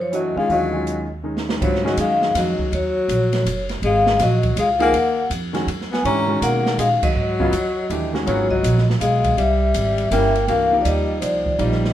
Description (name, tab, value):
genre	modal jazz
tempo	162 BPM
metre	3/4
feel	swing 64% on 8ths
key	G# dorian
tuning	A4 = 440 Hz
part	vibraphone with medium hard mallets	melody	0.0-11.9 s	Db5 to A#5	-21 LUFS	left 2 dB	none
part	breathy tenor saxophone	second line	0.0-11.9 s	F3 to C#4	-22 LUFS	left 3 dB	none
part	upright bass	bass	0.0-11.9 s	F#1 to B2	-23 LUFS	right 2 dB	none
part	clear grand piano	accompaniment	0.1-2.6, 4.8-11.9 s	C#3 to A#4	-25 LUFS	right 1 dB	none
part	open jazz drum kit	drums	0.1-11.9 s	crash cymbal, hi-hat, kick drum, ride cymbal, snare drum	-27 LUFS	right 1 dB	none
room	moderate large studio reverb, RT60 0.9 s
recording	minimal, uncompressed stereo recording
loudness	-17 LUFS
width	side -12 dB against mid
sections	0.0-1.6 A section; 1.6-10.5 B section; 10.5-11.9 C section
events	drum fill 1.2-1.6; band accent 7.0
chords	0.0 Ebm11; 1.6 G#9sus4; 9.4 C7b9; 10.5 F9sus4